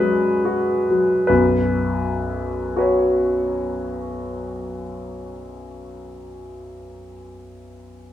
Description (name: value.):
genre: classical, impressionist solo piano.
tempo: 42 BPM.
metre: 4/4.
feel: rubato.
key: unclear.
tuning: A4 = 440 Hz.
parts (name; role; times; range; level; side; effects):
clear concert grand piano; solo; 0.0-8.1 s; B1 to C#5; -20 LUFS; left 1 dB; none.
room: wet recital hall reverb, RT60 1.4 s.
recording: close, detailed microphones.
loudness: -18 LUFS.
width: side -11 dB against mid.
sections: 0.0-1.3 A section; 1.3-7.0 B section.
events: slowing down 0.0-1.3.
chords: 0.0 B5; 1.3 Bsus2.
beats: | 1.29 2.76 4.18 5.58.